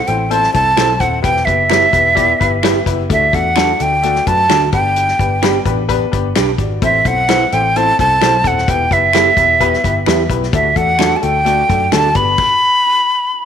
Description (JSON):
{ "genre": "uptempo 1960s-style soul", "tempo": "129 BPM", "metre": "4/4", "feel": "straight", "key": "E minor", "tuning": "A4 = 440 Hz", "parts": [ { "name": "breathy bright jazz flute", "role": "melody", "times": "0.0-13.4 s", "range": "E5 to B5", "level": "-13 LUFS", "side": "right 1 dB", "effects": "none" }, { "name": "clear upright piano", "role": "accompaniment", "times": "0.1-12.3 s", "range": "A3 to G5", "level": "-20 LUFS", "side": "left 12 dB", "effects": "none" }, { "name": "vintage muted picked electric bass", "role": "bass", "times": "0.1-12.3 s", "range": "D#1 to F#2", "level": "-20 LUFS", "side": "right 1 dB", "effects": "none" }, { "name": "natural country drum kit", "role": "drums", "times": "0.1-12.5 s", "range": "crash cymbal, hi-hat, kick drum, snare drum", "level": "-20 LUFS", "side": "left 4 dB", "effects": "none" }, { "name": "electric guitar through a small old amp", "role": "stabs", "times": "0.8-12.1 s", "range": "D4 to C5", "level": "-21 LUFS", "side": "right 12 dB", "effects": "tape echo" }, { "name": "finger snap", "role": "percussion", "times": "0.8-12.0 s", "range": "none", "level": "-26 LUFS", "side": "left 11 dB", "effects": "none" } ], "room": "moderate echo chamber reverb, RT60 1.5 s", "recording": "1960s-style stereo with parts hard left and right", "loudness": "-11 LUFS", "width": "side -8 dB against mid", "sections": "0.0-13.4 A section", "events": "none", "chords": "0.0 Am; 1.2 Em; 3.1 D; 4.7 G; 6.8 Am; 8.7 Em; 10.5 D; 12.2 G", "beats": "0.31 0.77 | 1.24 1.70 2.17 2.63 | 3.10 3.57 4.03 4.50 | 4.96 5.43 5.89 6.36 | 6.82 7.29 7.75 8.21 | 8.68 9.14 9.61 10.07 | 10.53 11.00 11.46 11.92 | 12.39 12.85 13.31" }